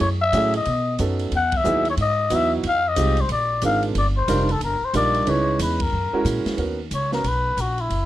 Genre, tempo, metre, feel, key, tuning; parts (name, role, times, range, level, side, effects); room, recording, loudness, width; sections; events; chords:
jazz, small-group swing and bop; 182 BPM; 4/4; swing 63% on 8ths; A4 = 441 Hz
trumpet with cup mute; melody; 0.0-8.1 s; E4 to F#5; -22 LUFS; left 3 dB
upright bass; bass; 0.0-8.1 s; E#1 to B2; -24 LUFS; equal
open jazz drum kit; drums; 0.0-8.0 s; hi-hat, kick drum, ride cymbal, snare drum; -33 LUFS; right 1 dB
warm baby grand piano; accompaniment; 0.3-7.2 s; F#3 to B4; -25 LUFS; right 4 dB
little or no reverb; close, detailed microphones; -19 LUFS; side -14 dB against mid
0.0-6.6 A section; 6.6-8.1 B section
band accent 1.5, 5.8; muted trumpet solo 6.6-8.1
0.0 F#m7; 0.7 B7; 1.3 Emaj7; 2.6 Fm7; 3.3 A#7; 4.0 D#maj7; 5.3 C#m7; 5.9 F#7; 6.6 Bmaj9